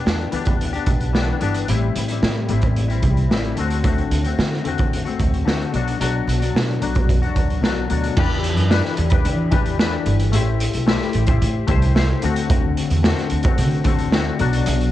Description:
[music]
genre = indie pop, bedroom pop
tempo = 111 BPM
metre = 4/4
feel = straight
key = E minor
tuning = A4 = 440 Hz
[part]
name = semi-hollow electric guitar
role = accompaniment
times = 0.0-14.9 s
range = A2 to C5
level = -23 LUFS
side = left 7 dB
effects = analog chorus, warbly pitch drift, cassette tape
[part]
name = upright bass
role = bass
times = 0.1-14.9 s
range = G1 to E3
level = -21 LUFS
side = right 1 dB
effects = tube saturation
[part]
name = raw garage drum kit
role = drums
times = 0.1-14.9 s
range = crash cymbal, hi-hat, kick drum, snare drum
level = -21 LUFS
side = right 1 dB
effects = none
[sound]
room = light reverb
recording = home recording on cassette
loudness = -17 LUFS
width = side -14 dB against mid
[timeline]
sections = 0.0-8.2 A section; 8.2-14.9 B section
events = none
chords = 0.0 Em7; 1.7 Am7; 3.6 D7; 5.7 Bm; 8.2 Em7; 10.3 Am7; 12.2 D7; 14.4 Bm

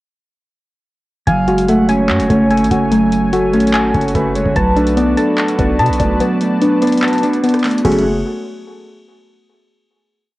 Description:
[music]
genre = hip hop, trap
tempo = 146 BPM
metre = 4/4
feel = half-time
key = F# minor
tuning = A4 = 442 Hz
[part]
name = breathy flute-like synth lead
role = second line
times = 1.3-8.0 s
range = A4 to F#5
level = -23 LUFS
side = right 2 dB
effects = chorus, cassette tape, analog delay, plate reverb
[part]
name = mellow electric guitar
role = accompaniment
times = 1.3-8.0 s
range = F#3 to F#4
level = -18 LUFS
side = right 2 dB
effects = spring reverb, low-pass filter, cassette tape
[part]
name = warm analog pad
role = sustained chords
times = 1.3-8.0 s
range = A3 to A5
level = -25 LUFS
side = equal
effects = chorus, cassette tape
[part]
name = soft round pluck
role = arpeggios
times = 1.3-8.0 s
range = A3 to A5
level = -15 LUFS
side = left 1 dB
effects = chorus, low-pass filter, cassette tape, analog delay, plate reverb
[part]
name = hard-hitting 808-style bass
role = bass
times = 1.3-8.2 s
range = F#1 to B2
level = -20 LUFS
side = equal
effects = none
[part]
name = booming analog drum machine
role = drums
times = 1.3-8.0 s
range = crash cymbal, handclaps, hi-hat, kick drum, rim click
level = -23 LUFS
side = equal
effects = cassette tape
[sound]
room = moderate booth ambience, RT60 0.2 s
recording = home recording on cassette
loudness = -12 LUFS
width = side -18 dB against mid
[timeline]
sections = 1.3-7.8 hook; 7.8-9.5 final chord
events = kick muted 6.2-7.8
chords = 1.3 F#madd9; 4.6 Bm7; 7.8 F#madd9

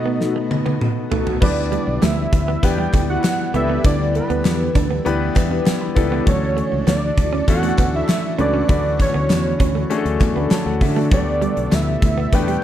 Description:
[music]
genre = 1980s-style pop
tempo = 99 BPM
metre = 4/4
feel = straight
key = unclear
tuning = A4 = 440 Hz
[part]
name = fat analog lead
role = melody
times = 0.0-12.6 s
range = B4 to G5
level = -24 LUFS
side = right 2 dB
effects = chorus, slapback echo
[part]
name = clear concert grand piano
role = accompaniment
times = 0.0-12.6 s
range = Cb3 to B5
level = -24 LUFS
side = left 5 dB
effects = none
[part]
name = string machine, full ensemble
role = sustained chords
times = 0.0-12.6 s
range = Cb3 to G4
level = -28 LUFS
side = equal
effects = ensemble chorus
[part]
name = direct-recorded clean electric guitar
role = riff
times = 0.1-12.6 s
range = F#3 to D4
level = -25 LUFS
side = right 8 dB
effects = lush chorus, slapback echo
[part]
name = mellow synth brass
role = stabs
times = 0.2-12.5 s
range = B3 to B4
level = -26 LUFS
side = left 2 dB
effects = chorus
[part]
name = gated 80s drum kit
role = drums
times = 0.2-12.6 s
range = crash cymbal, hi-hat, kick drum, snare drum, tambourine, toms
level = -19 LUFS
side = equal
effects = none
[part]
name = fretless electric bass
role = bass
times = 1.4-12.6 s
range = B1 to D3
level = -22 LUFS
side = equal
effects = none
[part]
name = group handclap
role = percussion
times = 2.0-11.9 s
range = none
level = -40 LUFS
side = left 7 dB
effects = none
[sound]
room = little or no reverb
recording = none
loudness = -16 LUFS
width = side -11 dB against mid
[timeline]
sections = 0.0-1.4 A section; 1.4-12.6 B section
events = break 0.0-1.4; band accent 0.0-1.4; drum fill 0.2-1.4; grand piano fill 5.1-6.3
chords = 0.0 Cb7; 1.4 Em7; 6.3 Dmaj7; 11.1 Gadd9

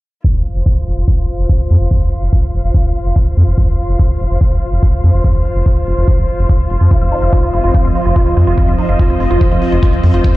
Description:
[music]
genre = psychedelic trance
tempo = 144 BPM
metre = 4/4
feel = straight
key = unclear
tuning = A4 = 439 Hz
[part]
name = electronic hi-hat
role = drums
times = 0.2-10.4 s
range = none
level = -46 LUFS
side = right 4 dB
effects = none
[part]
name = electronic kick drum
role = drums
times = 0.2-10.3 s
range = none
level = -12 LUFS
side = equal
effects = small room ambience
[part]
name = muted chamber string section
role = texture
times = 0.2-10.4 s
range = F4 to F5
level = -22 LUFS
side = left 2 dB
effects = sidechain pumping
[part]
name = round analog bass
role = bass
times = 0.3-10.4 s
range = F1 to F2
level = -13 LUFS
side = equal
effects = none
[part]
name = evolving wavetable pad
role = sustained chords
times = 7.1-10.4 s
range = F3 to C4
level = -20 LUFS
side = right 2 dB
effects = chorus, built-in reverb, sidechain pumping
[part]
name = woody wave-folded pluck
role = riff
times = 6.9-10.4 s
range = Eb4 to F5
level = -18 LUFS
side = moving between left 3 dB and right 4 dB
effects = chorus, auto-pan, sidechain pumping, digital delay
[sound]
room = little or no reverb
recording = played on a big sound system in a bare room, large studio reverb, low-pass filter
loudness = -11 LUFS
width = side -18 dB against mid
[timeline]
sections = 0.2-10.4 A section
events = filter sweep 0.2-10.4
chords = 0.2 F5

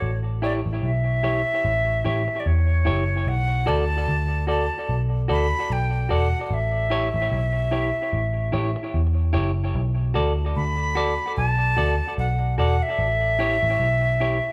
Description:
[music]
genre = roots reggae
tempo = 74 BPM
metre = 4/4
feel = swing 57% on 16ths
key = unclear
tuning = A4 = 440 Hz
[part]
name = breathy bright concert flute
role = melody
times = 0.0-14.5 s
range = C#5 to B5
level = -27 LUFS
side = equal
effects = none
[part]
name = vintage muted picked electric bass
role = bass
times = 0.0-14.4 s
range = E1 to E2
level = -25 LUFS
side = equal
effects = none
[part]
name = semi-hollow electric guitar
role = accompaniment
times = 0.4-14.4 s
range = E4 to D5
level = -30 LUFS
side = equal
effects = tape echo
[sound]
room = moderate large studio reverb, RT60 1.1 s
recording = band playing live in one room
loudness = -23 LUFS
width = mono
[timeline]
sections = 0.0-14.5 A section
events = none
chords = 0.0 A7; 3.3 Bm7; 6.5 A7; 9.7 Bm7; 13.0 A7

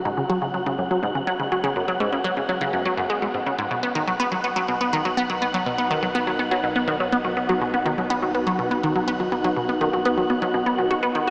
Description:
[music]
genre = ambient, sequencer-driven space music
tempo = 123 BPM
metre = 4/4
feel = straight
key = unclear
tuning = A4 = 440 Hz
[part]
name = evolving wavetable pad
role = sustained chords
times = 0.0-11.3 s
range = G#3 to F#4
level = -30 LUFS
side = equal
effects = chorus, built-in reverb
[part]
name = warm sub bass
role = bass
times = 0.0-11.3 s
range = F#1 to B1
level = -44 LUFS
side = equal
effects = none
[part]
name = wind-like tuned noise texture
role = texture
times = 0.0-11.3 s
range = F#5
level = -29 LUFS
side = equal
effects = built-in reverb
[part]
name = resonant blip pluck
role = riff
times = 0.1-11.3 s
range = F#2 to F#4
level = -21 LUFS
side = equal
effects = phaser, analog delay
[sound]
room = wet huge ambient reverb, RT60 8.0 s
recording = in a vast, echoing space, small speaker sound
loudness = -20 LUFS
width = side -32 dB against mid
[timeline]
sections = 0.0-11.3 A section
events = fade-in on ambient pad 0.0-11.3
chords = 0.0 F#sus2; 3.7 B

